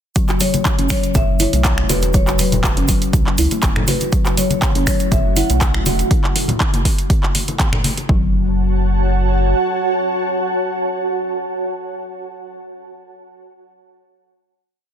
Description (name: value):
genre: afro house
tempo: 121 BPM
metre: 4/4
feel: straight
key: F# minor pentatonic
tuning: A4 = 440 Hz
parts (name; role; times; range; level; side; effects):
- kalimba; arpeggios; 0.2-8.3 s; C#3 to F#4; -23 LUFS; left 2 dB; sidechain pumping, tape echo
- afro-pop drum kit; drums; 0.2-8.1 s; finger snaps, handclaps, hi-hat; -22 LUFS; right 1 dB; soft clipping on snare
- electronic kick drum; drums; 0.2-8.2 s; none; -18 LUFS; equal; overdrive
- tube shaker; percussion; 0.2-6.1 s; none; -30 LUFS; right 7 dB; none
- marimba with medium mallets; melody; 0.4-6.1 s; B4 to F#5; -25 LUFS; left 1 dB; tape echo
- congas; percussion; 0.4-8.1 s; none; -24 LUFS; left 3 dB; none
- warm sub bass; bass; 1.1-9.5 s; E1 to C#2; -19 LUFS; equal; sidechain pumping
- ethereal airy pad; sustained chords; 4.7-11.5 s; A3 to A5; -22 LUFS; right 2 dB; ensemble chorus, built-in reverb, tremolo, sidechain pumping
room: studio ambience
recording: dense, heavily limited modern master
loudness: -14 LUFS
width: side -9 dB against mid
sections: 0.2-8.1 drop; 8.1-12.1 final chord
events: drop 0.2-8.1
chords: 0.2 F#m7; 8.1 F#m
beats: | 0.16 0.65 1.15 1.65 | 2.14 2.64 3.13 3.63 | 4.12 4.62 5.12 5.61 | 6.11 6.60 7.10 7.60 | 8.09 8.59 9.08 9.58 | 10.07 10.57 11.07